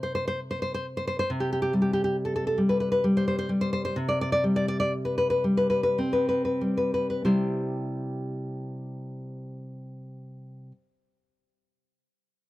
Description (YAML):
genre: romantic piece for solo classical guitar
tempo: 45-69 BPM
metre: 3/4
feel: rubato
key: C major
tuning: A4 = 439 Hz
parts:
  - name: nylon-string guitar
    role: solo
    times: 0.0-10.7 s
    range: C3 to D5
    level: -25 LUFS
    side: left 1 dB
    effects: none
room: small room ambience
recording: dry, close 1970s-style studio recording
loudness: -24 LUFS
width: side -16 dB against mid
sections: 0.0-1.3 A section; 1.3-7.3 B section; 7.3-11.1 C section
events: slowing down 0.0-7.3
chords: 0.0 N.C.; 1.3 C5; 7.3 C